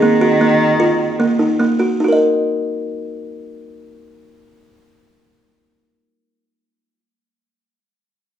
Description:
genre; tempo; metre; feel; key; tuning
contemporary instrumental, chamber music in an uneven meter; 153 BPM; 5/4; straight; Eb minor; A4 = 439 Hz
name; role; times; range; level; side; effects
rich cello; melody; 0.0-1.6 s; Eb3; -17 LUFS; equal; none
buzzing kalimba; arpeggios; 0.0-6.1 s; Bb3 to Eb5; -15 LUFS; right 1 dB; none
room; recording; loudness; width
moderate recital hall reverb, RT60 1.3 s; minimal, uncompressed stereo recording; -13 LUFS; side -10 dB against mid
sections
0.0-2.0 A section; 2.0-5.9 B section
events
slowing down 0.0-2.0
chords
0.0 Ebmadd9; 2.0 Ebm

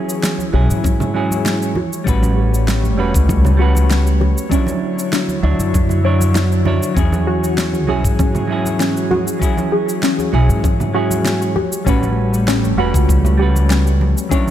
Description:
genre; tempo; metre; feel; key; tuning
sunset chillout; 98 BPM; 4/4; straight; unclear; A4 = 438 Hz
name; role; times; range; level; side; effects
semi-hollow electric guitar; accompaniment; 0.0-14.5 s; F#3 to C#5; -20 LUFS; right 1 dB; auto-pan, ping-pong delay
airy breathy pad; sustained chords; 0.0-14.5 s; D3 to C#5; -24 LUFS; equal; chorus
soft round pluck; arpeggios; 0.0-14.5 s; C#4 to C#5; -23 LUFS; left 1 dB; wide subtle chorus, ping-pong delay
electronic shaker and snare drum; drums; 0.1-14.5 s; none; -24 LUFS; equal; overdrive, studio reverb
congas; percussion; 0.4-14.5 s; none; -26 LUFS; right 2 dB; none
upright bass; bass; 0.5-14.1 s; E1 to G#2; -16 LUFS; equal; none
electronic kick drum; drums; 0.8-14.4 s; none; -17 LUFS; equal; studio reverb
room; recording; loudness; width
light reverb; none; -14 LUFS; side -11 dB against mid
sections
0.0-14.5 A section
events
filter sweep on synth pluck 0.0-14.5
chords
0.0 E69; 1.8 A13; 4.5 Dmaj9; 7.0 E69; 11.6 A13

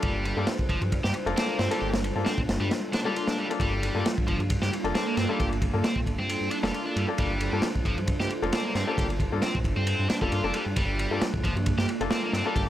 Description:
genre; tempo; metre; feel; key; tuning
breakbeat, breaks; 134 BPM; 4/4; swing 54% on 16ths; G minor; A4 = 437 Hz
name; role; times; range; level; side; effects
warbly tape-like pad; sustained chords; 0.0-12.7 s; G3 to C5; -33 LUFS; right 2 dB; chorus, built-in reverb, sidechain pumping
high-gain distorted guitar; riff; 0.0-12.6 s; F3 to G4; -32 LUFS; equal; distortion, digital delay
clear grand piano; stabs; 0.0-12.7 s; Bb3 to A4; -32 LUFS; left 4 dB; digital delay
dark detuned saw bass; bass; 0.0-12.7 s; F1 to G2; -30 LUFS; equal; none
crunchy breakbeat drum kit; drums; 0.0-12.7 s; kick drum, ride cymbal, snare drum; -29 LUFS; equal; none
room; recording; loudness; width
small room ambience; none; -24 LUFS; side -12 dB against mid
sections
0.0-12.7 A section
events
none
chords
0.0 Gm9

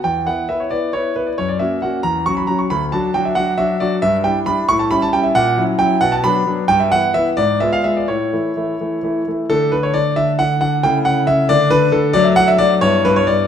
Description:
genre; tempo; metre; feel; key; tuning
classical-period piano sonatina; 90 BPM (dotted quarters); 6/8; rubato; D major from 4.0 s; A4 = 440 Hz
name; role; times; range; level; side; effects
clear concert grand piano; solo; 0.0-13.5 s; D2 to C#6; -14 LUFS; equal; none
room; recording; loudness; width
wet recital hall reverb, RT60 1.4 s; none; -14 LUFS; side -8 dB against mid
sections
0.0-9.5 A section; 9.5-13.5 B section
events
none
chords
0.0 E5; 1.4 F#; 2.0 F#5/E; 2.7 Dadd9; 4.0 Em7/G; 4.7 A7; 5.4 F#7/A#; 6.0 Bm; 6.7 Em/G; 7.4 G#dim7; 8.1 A; 9.5 D5; 10.8 A/C#; 11.5 D5; 12.2 D/F#; 12.8 Em/G

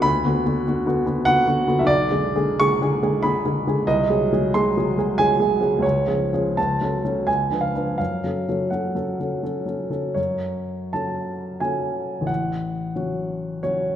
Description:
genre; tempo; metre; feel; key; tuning
classical, romantic character piece for solo piano; 75-100 BPM; 3/4; rubato; F# minor; A4 = 440 Hz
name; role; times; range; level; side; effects
warm grand piano; solo; 0.0-14.0 s; A1 to C#6; -20 LUFS; equal; none
room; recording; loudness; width
wet recital hall reverb, RT60 1.6 s; none; -20 LUFS; side -10 dB against mid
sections
0.0-10.2 A section; 10.2-14.0 A section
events
none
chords
0.0 Bm/D; 1.9 G#dim/B; 3.9 G#7/B#; 5.8 C#; 6.6 F#m/C#; 7.3 C#7b9; 8.0 F#m; 12.3 F#m/A

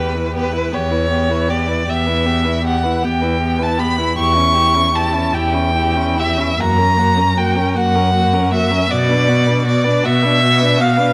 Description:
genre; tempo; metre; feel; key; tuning
classical, slow romantic movement for string quartet; 52 BPM (dotted quarters); 12/8; rubato; unclear; A4 = 440 Hz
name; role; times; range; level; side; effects
warm violin; melody; 0.0-11.1 s; E4 to B4; -26 LUFS; equal; none
rich violin; second line; 0.0-11.1 s; B4 to C#6; -19 LUFS; equal; none
warm viola; accompaniment; 0.0-11.1 s; A#3 to E4; -24 LUFS; equal; none
rich cello; bass; 0.0-11.0 s; E2 to B2; -21 LUFS; equal; none
room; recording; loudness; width
moderate concert hall reverb, RT60 2.4 s; close, detailed microphones; -16 LUFS; mono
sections
0.0-11.1 A section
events
none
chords
0.0 Em; 4.2 C#dim/E; 6.6 F#; 8.9 Bm

